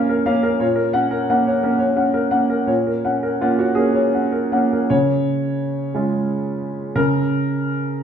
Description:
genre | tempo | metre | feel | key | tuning
neoclassical minimalist piano | 51-61 BPM (dotted quarters) | 6/8 | rubato | Db major | A4 = 440 Hz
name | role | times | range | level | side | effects
warm concert grand piano | solo | 0.0-8.0 s | Bb2 to Gb5 | -17 LUFS | equal | none
room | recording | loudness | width
wet recital hall reverb, RT60 1.3 s | recorded in a church or concert hall | -17 LUFS | side -8 dB against mid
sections
0.0-4.9 A section; 4.9-8.0 B section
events
none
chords
0.0 Bbm; 0.6 Gb/Bb; 4.9 Db

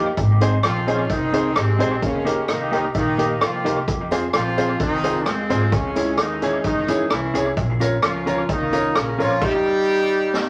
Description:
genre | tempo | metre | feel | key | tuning
ska | 130 BPM | 4/4 | straight | unclear | A4 = 440 Hz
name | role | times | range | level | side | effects
warm horn section | melody | 0.0-10.5 s | C3 to G4 | -24 LUFS | equal | none
mellow electric guitar | accompaniment | 0.0-9.4 s | Bb3 to Bb4 | -30 LUFS | equal | dub echo
warm upright piano | stabs | 0.0-9.3 s | Eb4 to Db5 | -26 LUFS | equal | none
upright bass | bass | 0.0-9.4 s | Ab1 to F2 | -28 LUFS | equal | none
street-band drum kit | drums | 0.2-10.4 s | crash cymbal, hi-hat, kick drum, rim click, snare drum | -27 LUFS | equal | dub echo
tambourine | percussion | 4.1-9.3 s | none | -50 LUFS | equal | none
room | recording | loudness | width
wet studio ambience, RT60 0.5 s | vinyl crackle | -20 LUFS | mono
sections
0.0-10.5 A section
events
drum fill 10.3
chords
0.2 Ab; 2.0 Eb; 3.9 Fm; 5.7 Dbm; 7.6 Bbm; 9.4 N.C.

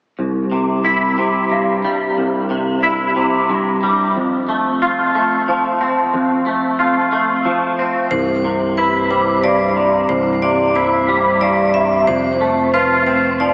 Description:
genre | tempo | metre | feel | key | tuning
rock | 60 BPM (dotted quarters) | 6/8 | straight | C major | A4 = 440 Hz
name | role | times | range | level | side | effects
twangy electric guitar | arpeggios | 0.2-13.5 s | C2 to F4 | -14 LUFS | equal | ensemble chorus, diffuse ambient delay
vibraphone with hard mallets | arpeggios | 8.1-13.5 s | B4 to E5 | -17 LUFS | equal | diffuse ambient delay
fingered electric bass | bass | 8.1-13.5 s | C1 to F1 | -31 LUFS | equal | none
room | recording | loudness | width
wet lush hall reverb, RT60 2.8 s | dreamy mix soaked in reverb, small speaker sound | -13 LUFS | side -28 dB against mid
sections
0.2-8.1 A section; 8.1-13.5 B section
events
none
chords
0.2 C; 4.2 F; 8.1 C; 12.1 F

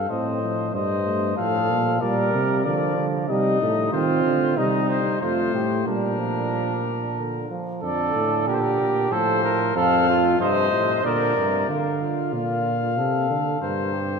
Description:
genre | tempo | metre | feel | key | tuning
classical, imitative canzona for brass ensemble | 94 BPM | 3/4 | straight | Bb major from 3.9 s | A4 = 441 Hz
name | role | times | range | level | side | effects
mellow trumpet | melody | 0.0-14.2 s | Bb4 to F5 | -26 LUFS | left 7 dB | none
mellow flugelhorn | second line | 0.0-14.2 s | D4 to C5 | -25 LUFS | right 3 dB | none
clear tuba | bass | 0.0-14.2 s | F2 to Eb3 | -26 LUFS | right 2 dB | none
warm euphonium | accompaniment | 0.1-11.7 s | C3 to C4 | -27 LUFS | right 1 dB | none
room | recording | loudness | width
wet church reverb, RT60 3.8 s | minimal, uncompressed stereo recording | -20 LUFS | side -5 dB against mid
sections
0.0-7.8 A section; 7.8-11.7 B section; 11.7-14.2 A section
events
none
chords
0.1 Adim; 1.4 Fadd11/A; 2.0 Gm/Bb; 3.3 Cm; 5.2 F; 5.9 Bb; 7.8 Bb/F; 9.1 F/A; 9.8 F; 11.0 Bb; 11.7 Bb/D; 13.0 F6/C; 13.6 Gm

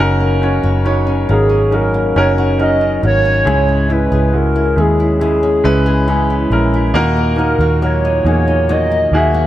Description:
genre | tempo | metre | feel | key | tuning
pop | 69 BPM | 4/4 | straight | unclear | A4 = 440 Hz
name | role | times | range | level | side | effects
clear concert grand piano | accompaniment | 0.0-9.5 s | G#2 to C#5 | -16 LUFS | equal | none
flamenco guitar | arpeggios | 0.0-9.5 s | F#2 to G#4 | -22 LUFS | left 1 dB | ping-pong delay
vintage muted fingered electric bass | bass | 0.0-9.5 s | F#1 to E2 | -16 LUFS | equal | none
hollow clarinet-like synth lead | melody | 1.3-9.5 s | G#4 to E5 | -17 LUFS | right 1 dB | chorus
room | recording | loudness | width
light reverb, small room ambience | none | -11 LUFS | side -13 dB against mid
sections
0.0-9.5 A section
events
none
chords
0.0 F#6; 3.5 C#m; 6.9 D#m

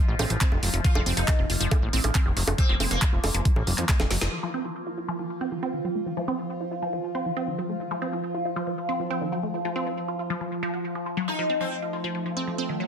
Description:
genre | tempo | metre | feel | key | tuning
psychedelic trance | 138 BPM | 4/4 | straight | F major | A4 = 439 Hz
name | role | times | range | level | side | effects
overtone-sweeping drone | sustained chords | 0.0-12.9 s | F3 to F4 | -31 LUFS | equal | chorus, built-in reverb, phaser, sidechain pumping
fat analog bass | bass | 0.1-4.3 s | F1 to F2 | -26 LUFS | equal | none
wide unison pluck | riff | 0.2-12.8 s | Eb3 to Gb4 | -31 LUFS | right 1 dB | auto-pan, sidechain pumping, tape echo
drum and bass drum kit | drums | 0.2-4.3 s | bongos, handclaps, hi-hat, snare drum | -28 LUFS | right 1 dB | overdrive, low-pass filter on hats, low-pass filter on perc, low-pass filter on snare
electronic kick drum | drums | 0.4-4.0 s | none | -22 LUFS | equal | overdrive
sitar | melody | 0.8-3.1, 11.3-11.8 s | Bb3 to F4 | -32 LUFS | left 2 dB | phaser, sidechain pumping, ping-pong delay
room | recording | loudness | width
light reverb, digital ambience | dense, heavily limited modern master | -24 LUFS | side -7 dB against mid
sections
0.0-4.3 A section; 4.3-12.9 B section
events
drum fill 3.9-4.3; band accent 4.2; filter sweep on synth arpeggio sound 4.3-12.9; filter sweep on synth drone 4.3-12.9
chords
0.0 F5

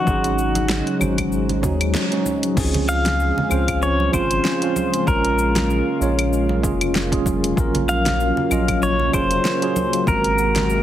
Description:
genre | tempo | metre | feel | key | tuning
sunset chillout | 96 BPM | 4/4 | swing 56% on 16ths | unclear | A4 = 441 Hz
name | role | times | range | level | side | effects
pedal steel guitar | melody | 0.0-10.8 s | Gb4 to F5 | -22 LUFS | left 1 dB | ping-pong delay
tine electric piano | accompaniment | 0.0-10.8 s | F3 to Eb5 | -23 LUFS | right 1 dB | medium tremolo, auto-pan, digital delay
lush unison pad | sustained chords | 0.0-10.8 s | C3 to Ab4 | -26 LUFS | equal | chorus
round analog bass | bass | 0.1-10.8 s | F1 to Eb2 | -23 LUFS | equal | none
deep house drum kit | drums | 0.1-10.8 s | cabasa, claves, crash cymbal, hi-hat, snare drum | -26 LUFS | left 1 dB | overdrive
electronic kick drum | drums | 0.1-10.2 s | none | -25 LUFS | equal | overdrive
congas | percussion | 0.6-10.7 s | none | -29 LUFS | right 2 dB | none
room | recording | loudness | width
moderate plate reverb, RT60 1.4 s | heavily compressed radio sound, multiband compression | -17 LUFS | side -11 dB against mid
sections
0.0-2.6 A section; 2.6-10.8 B section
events
band accent 1.9-2.3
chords
0.1 Ab7sus4; 2.6 Dbmaj7; 5.1 Bbm7; 7.6 Gbmaj7/Bb; 10.1 Ab9

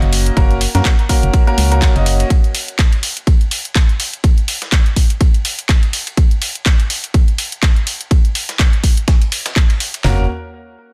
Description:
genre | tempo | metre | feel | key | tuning
piano house | 124 BPM | 4/4 | swing 57% on 16ths | F# major | A4 = 442 Hz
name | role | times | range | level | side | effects
clear upright piano | riff | 0.0-2.3, 10.0-10.2 s | A#3 to D#5 | -23 LUFS | equal | sidechain pumping, tape echo
organ-like FM bass | bass | 0.0-2.2, 10.0-10.3 s | F#1 to F#2 | -17 LUFS | equal | sidechain pumping
house drum kit | drums | 0.0-10.0 s | handclaps, hi-hat | -22 LUFS | equal | none
dusty soul sampler-style drum kit | drums | 0.1-10.0 s | ride cymbal, snare drum | -31 LUFS | equal | high-pass filter on snare, high-pass filter on cymbals
house drum kit | drums | 0.4-10.2 s | handclaps, kick drum, snare drum, toms | -14 LUFS | equal | none
room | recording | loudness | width
digital ambience | dense, heavily limited modern master | -15 LUFS | mono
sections
0.0-10.0 A section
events
none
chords
0.0 F#; 2.3 N.C.; 10.0 F#

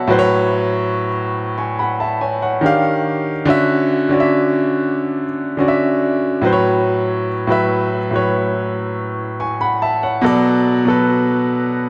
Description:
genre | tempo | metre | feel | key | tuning
R&B | 71 BPM | 4/4 | straight | A major | A4 = 440 Hz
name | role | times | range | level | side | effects
clear baby grand piano | solo | 0.0-11.9 s | A2 to C#6 | -17 LUFS | equal | delay
room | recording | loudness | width
wet lush hall reverb, RT60 1.7 s | dreamy mix soaked in reverb | -17 LUFS | mono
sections
0.0-3.5 A section; 3.5-11.9 B section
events
none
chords
0.1 A69; 2.6 D#maj9; 3.5 Dmaj9; 6.4 A69; 10.2 Bm7

